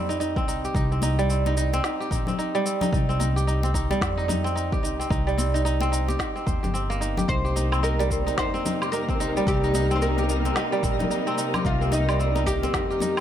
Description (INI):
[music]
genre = organic downtempo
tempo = 110 BPM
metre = 4/4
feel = swing 60% on 16ths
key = C minor pentatonic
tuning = A4 = 440 Hz
[part]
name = kora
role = arpeggios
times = 0.0-13.2 s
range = G3 to C5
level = -26 LUFS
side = right 2 dB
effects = ping-pong delay
[part]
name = upright bass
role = bass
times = 0.0-13.2 s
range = G1 to F2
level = -26 LUFS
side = equal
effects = tube saturation, sidechain pumping
[part]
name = electronic shaker, snare drum and woodblock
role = drums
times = 0.1-13.2 s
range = none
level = -33 LUFS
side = equal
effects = none
[part]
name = electronic kick drum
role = drums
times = 0.4-12.9 s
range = none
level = -28 LUFS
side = equal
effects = none
[part]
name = congas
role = percussion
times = 1.0-13.1 s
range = none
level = -33 LUFS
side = left 5 dB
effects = none
[part]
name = oud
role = melody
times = 7.3-13.2 s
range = Eb4 to C5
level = -29 LUFS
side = left 1 dB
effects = tape echo
[part]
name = muted studio string section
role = sustained chords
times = 7.3-13.2 s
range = C3 to Eb4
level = -32 LUFS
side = left 2 dB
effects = sidechain pumping
[part]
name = twinkling granular texture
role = texture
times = 7.8-13.2 s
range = Bb3 to Bb4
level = -36 LUFS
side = equal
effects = built-in reverb
[sound]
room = light reverb, studio ambience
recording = none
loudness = -22 LUFS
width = side -10 dB against mid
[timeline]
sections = 0.0-13.2 A section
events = none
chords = 0.0 Cm7